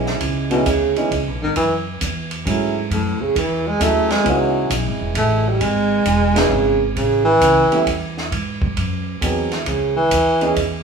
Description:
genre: jazz, small-group swing and bop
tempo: 133 BPM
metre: 3/4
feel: swing 67% on 8ths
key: C# minor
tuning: A4 = 436 Hz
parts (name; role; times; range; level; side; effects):
- warm concert grand piano; accompaniment; 0.0-10.6 s; E3 to G#4; -22 LUFS; right 3 dB; none
- upright bass; bass; 0.0-10.8 s; E1 to G#2; -23 LUFS; right 1 dB; none
- compact cocktail drum kit; drums; 0.1-10.7 s; hi-hat, kick drum, ride cymbal, snare drum; -25 LUFS; right 2 dB; none
- breathy baritone saxophone; melody; 0.5-10.5 s; A2 to A3; -17 LUFS; right 1 dB; none
room: moderate large studio reverb, RT60 1.1 s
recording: band playing live in one room, studio ambience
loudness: -16 LUFS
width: side -5 dB against mid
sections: 0.0-10.8 A section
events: band accent 6.3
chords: 0.0 C#m9; 1.6 F#m9; 4.3 C#m9; 7.0 A; 8.3 G#7#9; 9.7 C#madd9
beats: | 0.21 0.66 1.11 | 1.56 2.01 2.46 | 2.91 3.36 3.81 | 4.26 4.71 5.16 | 5.61 6.06 6.51 | 6.96 7.41 7.86 | 8.31 8.76 9.21 | 9.66 10.11 10.56

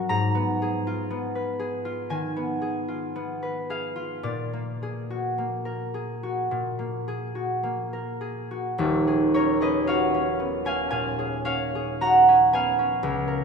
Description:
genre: classical, solo harp piece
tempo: 51-62 BPM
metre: 4/4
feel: rubato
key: Eb minor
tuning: A4 = 440 Hz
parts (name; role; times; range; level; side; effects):
- concert harp; solo; 0.0-13.4 s; Eb1 to Bb5; -23 LUFS; right 1 dB; none
room: wet church reverb, RT60 3.0 s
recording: minimal, uncompressed stereo recording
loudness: -23 LUFS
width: side -5 dB against mid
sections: 0.0-8.8 A section; 8.8-13.4 B section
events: none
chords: 0.1 Abm6; 4.3 Bbaug7; 8.8 Ebm11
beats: | 0.10 1.11 2.11 3.16 | 4.26 5.40 6.52 7.66 | 8.80 9.88 10.91 12.03 | 13.04

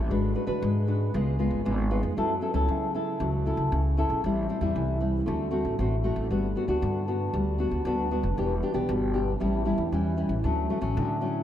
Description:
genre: samba and choro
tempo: 116 BPM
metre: 4/4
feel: straight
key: D major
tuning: A4 = 439 Hz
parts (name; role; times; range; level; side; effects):
- nylon-string guitar; accompaniment; 0.0-11.4 s; G#2 to B4; -27 LUFS; left 1 dB; wide subtle chorus
- upright bass; bass; 0.0-11.4 s; E1 to F#3; -28 LUFS; equal; none
room: wet cathedral reverb, RT60 6.4 s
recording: dreamy mix soaked in reverb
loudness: -24 LUFS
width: side -11 dB against mid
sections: 0.0-11.4 A section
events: none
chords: 0.1 G#m7b5; 1.1 C#7; 2.2 F#m7; 4.2 Am7; 5.3 D7; 6.3 Gmaj7; 8.4 Em7; 9.4 A7; 10.4 Dmaj7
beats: | 0.10 0.62 1.14 1.66 | 2.17 2.69 3.21 3.72 | 4.24 4.76 5.28 5.79 | 6.31 6.83 7.34 7.86 | 8.38 8.90 9.41 9.93 | 10.45 10.96

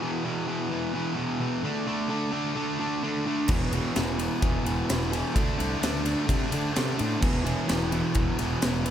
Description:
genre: hard rock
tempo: 129 BPM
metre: 4/4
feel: straight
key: unclear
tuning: A4 = 440 Hz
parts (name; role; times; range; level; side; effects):
- distorted electric guitar; riff; 0.0-8.9 s; E2 to D4; -27 LUFS; equal; distortion, slapback echo
- fuzz picked electric bass; bass; 3.5-8.9 s; E1 to D3; -31 LUFS; equal; overdrive
- big rock drum kit; drums; 3.5-8.9 s; crash cymbal, kick drum, ride cymbal, snare drum; -28 LUFS; equal; none
room: moderate lush hall reverb, RT60 1.7 s, small room ambience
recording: big arena sound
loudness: -24 LUFS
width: side -10 dB against mid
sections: 0.0-8.9 A section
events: none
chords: 0.0 E5; 1.6 D5; 3.5 E5; 5.4 D5; 7.2 E5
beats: 0.23 0.70 1.17 | 1.64 2.10 2.57 3.03 | 3.50 3.97 4.43 4.90 | 5.36 5.83 6.29 6.76 | 7.22 7.69 8.16 8.62

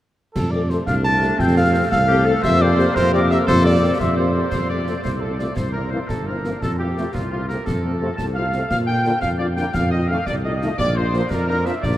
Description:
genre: military-style march for wind band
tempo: 115 BPM (dotted quarters)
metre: 6/8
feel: straight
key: F major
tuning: A4 = 440 Hz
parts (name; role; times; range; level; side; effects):
- dark cornet; melody; 0.3-12.0 s; F4 to A5; -24 LUFS; right 2 dB; none
- mellow hollow piccolo; second line; 0.4-4.5 s; A5 to A6; -26 LUFS; left 3 dB; none
- dark trombone section; sustained chords; 0.4-11.7 s; C3 to Bb3; -28 LUFS; right 1 dB; none
- mellow tuba; bass; 0.4-12.0 s; G1 to Bb2; -21 LUFS; equal; none
- concert snare drum, clash cymbals and concert bass drum; drums; 0.4-12.0 s; none; -28 LUFS; equal; none
- dark French horn section; accompaniment; 0.5-11.7 s; A3 to A4; -28 LUFS; left 3 dB; none
- clear woodwind section; second line; 0.9-12.0 s; C4 to A5; -26 LUFS; left 1 dB; none
room: wet huge ambient reverb, RT60 8.8 s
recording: in a vast, echoing space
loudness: -17 LUFS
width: side -13 dB against mid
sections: 0.4-4.5 A section; 4.5-12.0 B section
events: none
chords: 0.4 F; 2.4 C5/F; 4.5 F; 5.6 C7; 6.6 F; 8.7 Bb; 9.7 F7; 10.8 Bb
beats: | 0.35 0.87 | 1.40 1.92 | 2.44 2.96 | 3.48 4.00 | 4.53 5.05 | 5.57 6.09 | 6.61 7.13 | 7.66 8.18 | 8.70 9.22 | 9.74 10.27 | 10.79 11.31 | 11.83

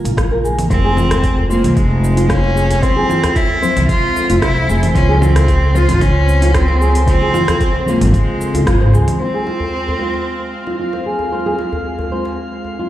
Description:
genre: organic downtempo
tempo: 113 BPM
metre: 4/4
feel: straight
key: F minor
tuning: A4 = 440 Hz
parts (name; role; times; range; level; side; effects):
- muted felt-like synth keys; accompaniment; 0.0-12.9 s; Db3 to C5; -22 LUFS; left 1 dB; chorus, vintage 12-bit sampler grit, sidechain pumping, tape echo, shimmer reverb
- nylon-string guitar; arpeggios; 0.0-12.9 s; F4 to C5; -21 LUFS; equal; low-pass filter, tape echo, shimmer reverb
- upright bass; bass; 0.0-9.1 s; F1 to Db2; -14 LUFS; equal; sidechain pumping
- afro-pop drum kit; drums; 0.1-9.2 s; congas, hi-hat, rim click, shaker; -23 LUFS; right 2 dB; overdrive, low-pass filter on perc, small room ambience, low-pass filter on hats, low-pass filter on snare
- electronic kick drum; drums; 0.2-8.8 s; none; -17 LUFS; equal; overdrive, small room ambience
- rich cello; melody; 0.7-11.0 s; Ab3 to F4; -19 LUFS; equal; tape echo, shimmer reverb
- drifting glass-harmonics texture; texture; 1.8-12.9 s; C5 to F5; -30 LUFS; left 1 dB; chorus, built-in reverb, shimmer reverb
- djembe; percussion; 1.0-12.8 s; none; -26 LUFS; left 1 dB; none
room: moderate recital hall reverb, RT60 1.5 s, small room reverb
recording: played on a big sound system in a bare room, large studio reverb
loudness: -12 LUFS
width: side -13 dB against mid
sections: 0.0-9.2 A section; 9.2-12.9 B section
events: band accent 8.7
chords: 0.0 Bbm7; 0.7 Fm; 5.0 Dbmaj7; 9.2 Fm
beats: 0.17 | 0.70 1.24 1.77 2.30 | 2.83 3.36 3.89 4.42 | 4.95 5.48 6.01 6.54 | 7.08 7.61 8.14 8.67 | 9.20 9.73 10.26 10.79 | 11.32 11.86 12.39

